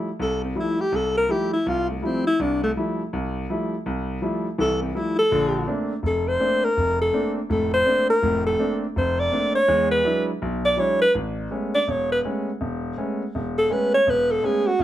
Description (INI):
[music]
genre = jazz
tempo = 164 BPM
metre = 4/4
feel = swing 63% on 8ths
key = F major, A major from 11.1 s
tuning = A4 = 436 Hz
[part]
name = warm concert grand piano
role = accompaniment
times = 0.0-14.8 s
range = E1 to E4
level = -25 LUFS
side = equal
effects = none
[part]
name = breathy alto saxophone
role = melody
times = 0.2-14.8 s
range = A3 to D5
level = -20 LUFS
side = equal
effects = none
[sound]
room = light reverb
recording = dark, warm production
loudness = -20 LUFS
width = side -12 dB against mid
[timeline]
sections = 0.0-11.1 A section; 11.1-14.8 A section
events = alto saxophone solo 0.0-14.8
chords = 0.0 Fmaj9; 5.3 Bbmaj9; 9.7 E9; 11.1 Amaj9